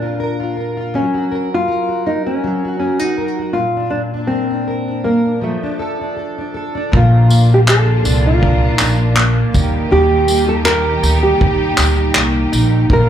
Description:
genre	acoustic pop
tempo	80 BPM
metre	4/4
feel	swing 55% on 16ths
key	Bb major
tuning	A4 = 439 Hz
part	nylon-string guitar	melody	0.0-13.1 s	A3 to Bb4	-17 LUFS	equal	slapback echo, ping-pong delay
part	fingerpicked plugged-in steel-string acoustic guitar	accompaniment	0.0-13.1 s	Bb2 to Bb4	-19 LUFS	right 1 dB	double-tracked left and right, slapback echo
part	warm studio string section	sustained chords	6.9-13.1 s	Bb2 to G4	-23 LUFS	equal	none
part	upright bass	bass	6.9-13.1 s	Bb1 to Eb2	-15 LUFS	equal	none
part	natural country drum kit	drums	6.9-13.1 s	handclaps, kick drum, tambourine	-17 LUFS	equal	none
room	little or no reverb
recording	live gig heard through the venue's PA, club reverb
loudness	-13 LUFS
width	side -10 dB against mid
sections	0.0-6.9 A section; 6.9-13.1 B section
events	none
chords	0.0 Bb; 0.9 Gb; 3.6 Bb; 5.4 F6; 6.9 Bb; 9.5 Eb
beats	0.19 | 0.94 1.69 2.44 3.19 | 3.94 4.69 5.43 6.18 | 6.93 7.68 8.42 9.17 | 9.92 10.66 11.41 12.15 | 12.90

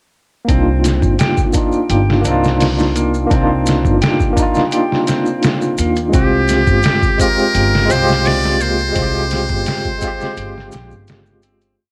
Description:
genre	trip hop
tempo	85 BPM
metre	4/4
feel	straight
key	C minor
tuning	A4 = 444 Hz
part	overdriven tine electric piano	accompaniment	0.4-11.8 s	Ab3 to G4	-19 LUFS	equal	fast tremolo, cassette tape
part	clean electric guitar	arpeggios	0.5-11.8 s	Bb3 to G4	-27 LUFS	equal	cassette tape, dub echo
part	upright bass	bass	0.5-11.8 s	G1 to Eb2	-21 LUFS	equal	tube saturation
part	trip hop sampler-style drum kit	drums	0.5-11.8 s	hi-hat, kick drum, snare drum	-20 LUFS	equal	cassette tape
part	maracas	percussion	0.5-11.7 s	none	-34 LUFS	equal	none
part	trumpet with metal mute	melody	6.2-10.7 s	G4 to D5	-20 LUFS	equal	cassette tape, dub echo
room	light reverb, small room ambience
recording	home recording on cassette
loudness	-15 LUFS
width	mono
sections	0.5-11.8 groove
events	fade-out 8.0-11.8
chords	0.5 Cm11; 6.1 Fmadd9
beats	| 0.49 1.19 1.90 2.61 | 3.31 4.02 4.72 5.43 | 6.13 6.84 7.55 8.25 | 8.96 9.66 10.37 11.08

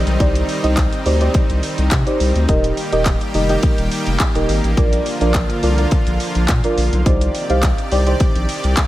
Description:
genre	dance-pop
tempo	105 BPM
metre	4/4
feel	straight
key	C minor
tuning	A4 = 440 Hz
part	deep mellow chord stab	accompaniment	0.0-8.8 s	D4 to F5	-21 LUFS	right 1 dB	chorus, sidechain pumping
part	supersaw pad	sustained chords	0.0-8.9 s	C3 to D5	-23 LUFS	equal	sidechain pumping
part	saturated sub bass	bass	0.0-8.7 s	Eb1 to C3	-18 LUFS	equal	sidechain pumping
part	downlifter	sound effects	0.3-2.5 s	none	barely audible	none	none
part	pop drum kit	drums	0.1-8.9 s	handclaps, hi-hat, kick drum	-18 LUFS	equal	none
part	group handclap	percussion	0.8-8.9 s	none	-33 LUFS	left 6 dB	none
room	little or no reverb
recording	none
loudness	-14 LUFS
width	side -15 dB against mid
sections	0.0-8.9 A section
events	none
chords	0.0 Cmadd9; 2.5 Eb; 4.8 Bb; 7.1 Cmadd9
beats	| 0.20 0.77 1.35 1.92 | 2.49 3.06 3.63 4.20 | 4.77 5.35 5.92 6.49 | 7.06 7.63 8.20 8.77

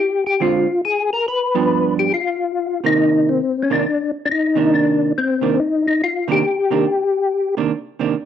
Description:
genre	jazz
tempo	140 BPM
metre	4/4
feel	swing 65% on 8ths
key	C minor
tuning	A4 = 440 Hz
part	percussive tonewheel organ	melody	0.0-7.5 s	C4 to B4	-17 LUFS	left 4 dB	slow rotary speaker, chorus vibrato, cassette tape, plate reverb
part	vintage hollow-body jazz guitar	accompaniment	0.4-8.1 s	G2 to F4	-19 LUFS	right 8 dB	cassette tape
room	wet studio reverb, RT60 0.5 s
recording	home recording on cassette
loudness	-16 LUFS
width	side -9 dB against mid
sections	0.0-2.1 A section; 2.1-8.3 A section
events	none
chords	0.4 Dm7b5; 1.3 G7; 2.1 Cm9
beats	| 0.41 0.84 1.27 1.70 | 2.13 2.56 2.99 3.42 | 3.85 4.28 4.71 5.14 | 5.57 6.00 6.43 6.86 | 7.29 7.72

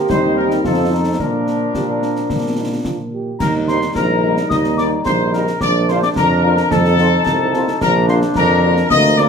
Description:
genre	military-style march for wind band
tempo	109 BPM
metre	2/4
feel	straight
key	Bb major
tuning	A4 = 440 Hz
part	dark trumpet section	melody	0.0-9.3 s	A4 to Eb5	-20 LUFS	left 2 dB	none
part	clear euphonium	second line	0.0-3.4 s	D4 to G4	-23 LUFS	right 3 dB	none
part	mellow French horn section	accompaniment	0.0-9.3 s	F3 to F4	-24 LUFS	left 4 dB	none
part	warm trombone section	sustained chords	0.0-9.3 s	F3 to Eb4	-22 LUFS	equal	none
part	warm tuba	bass	0.1-9.3 s	Bb1 to Bb2	-18 LUFS	right 2 dB	none
part	concert snare drum, concert bass drum and clash cymbals	drums	0.1-9.3 s	none	-24 LUFS	left 1 dB	none
part	wooden piccolo	second line	3.4-9.2 s	A5 to Eb6	-20 LUFS	left 5 dB	none
room	wet large studio reverb, RT60 0.9 s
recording	minimal, uncompressed stereo recording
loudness	-14 LUFS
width	side -6 dB against mid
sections	0.0-3.4 A section; 3.4-9.3 B section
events	none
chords	0.1 Cm/Eb; 0.6 F7; 1.2 Bb; 3.4 Eb; 5.6 Bb; 6.7 F7; 7.8 Bb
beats	| 0.09 0.64 | 1.20 1.75 | 2.30 2.85 | 3.40 3.95 | 4.50 5.05 | 5.60 6.15 | 6.70 7.25 | 7.80 8.36 | 8.91

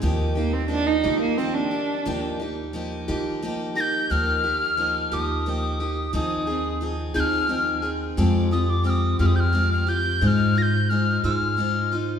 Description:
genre	acoustic folk duo or small band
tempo	59 BPM (dotted quarters)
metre	6/8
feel	straight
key	Eb major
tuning	A4 = 439 Hz
part	picked steel-string acoustic guitar	accompaniment	0.0-12.2 s	Eb3 to C5	-26 LUFS	left 1 dB	none
part	upright bass	bass	0.0-12.2 s	Eb2 to Eb3	-25 LUFS	equal	none
part	warm cello	second line	0.4-2.2 s	Bb3 to Eb4	-23 LUFS	right 4 dB	none
part	mellow tin whistle	melody	3.8-12.0 s	D6 to Bb6	-24 LUFS	left 2 dB	none
room	wet recital hall reverb, RT60 1.7 s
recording	recorded in a church or concert hall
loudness	-21 LUFS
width	side -8 dB against mid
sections	0.0-4.1 A section; 4.1-12.2 B section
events	cello solo 0.0-4.1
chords	0.0 Ebadd9; 6.1 Ab6/Eb; 8.2 Fmadd9; 10.2 Ab6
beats	| 0.03 1.05 | 2.07 3.09 | 4.10 5.12 | 6.14 7.16 | 8.18 9.20 | 10.22 11.24

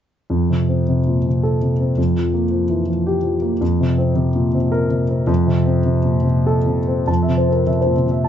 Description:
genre	neoclassical minimalist piano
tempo	92-112 BPM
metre	3/4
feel	rubato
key	F major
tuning	A4 = 436 Hz
part	dark concert grand piano	solo	0.3-8.3 s	F2 to A5	-15 LUFS	equal	none
room	light reverb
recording	nothing above 7.7 kHz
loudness	-16 LUFS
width	side -9 dB against mid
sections	0.3-7.1 A section; 7.1-8.3 B section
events	none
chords	0.3 F; 2.0 Gm7/F; 3.6 Bbsus2/F; 5.3 Am/F; 7.1 Fmaj7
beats	| 0.30 0.88 1.44 | 1.97 2.51 3.06 | 3.61 4.17 4.73 | 5.28 5.86 6.45 | 7.08 7.67 8.24

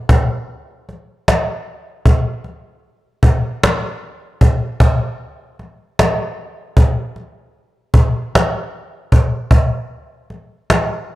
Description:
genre	R&B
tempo	51 BPM (dotted quarters)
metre	6/8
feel	straight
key	none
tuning	none
part	cajon	drums	0.1-10.9 s	none	-13 LUFS	equal	none
room	small room ambience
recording	dark, warm production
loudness	-14 LUFS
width	side -17 dB against mid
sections	0.0-9.5 A section; 9.5-11.2 B section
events	none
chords	none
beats	| 0.10 1.27 | 2.45 3.62 | 4.80 5.98 | 7.15 8.33 | 9.51 10.68

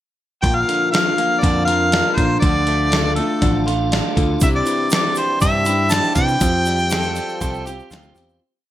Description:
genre	folk rock and heartland rock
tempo	120 BPM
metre	4/4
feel	straight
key	unclear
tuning	A4 = 442 Hz
part	mellow harmonica	melody	0.4-7.9 s	A4 to A5	-20 LUFS	equal	none
part	picked steel-string acoustic guitar	accompaniment	0.4-8.4 s	Bb2 to Bb4	-25 LUFS	left 5 dB	none
part	electric guitar through a small old amp	riff	0.4-8.4 s	Bb2 to G4	-23 LUFS	right 3 dB	spring reverb
part	picked electric bass	bass	0.4-8.4 s	A1 to C3	-22 LUFS	equal	none
part	dusty soul sampler-style drum kit	drums	0.4-8.3 s	hi-hat, kick drum, snare drum	-21 LUFS	equal	gated reverb
part	tonewheel organ	sustained chords	0.5-8.4 s	D4 to C5	-32 LUFS	left 1 dB	none
part	tube shaker	percussion	4.4-8.4 s	none	-32 LUFS	right 8 dB	none
part	overdriven harmonica	second line	6.9-8.2 s	F4 to A4	-30 LUFS	right 3 dB	none
room	light reverb, small room ambience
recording	bright 1980s-style digital production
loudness	-15 LUFS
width	side -13 dB against mid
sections	0.4-8.4 pre-chorus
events	fade-out 6.4-8.4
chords	0.4 Bb; 2.4 Dm; 4.4 Cadd9; 6.4 Fsus2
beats	| 0.44 0.93 1.43 1.93 | 2.42 2.92 3.42 3.91 | 4.41 4.91 5.41 5.91 | 6.41 6.92 7.42 7.92

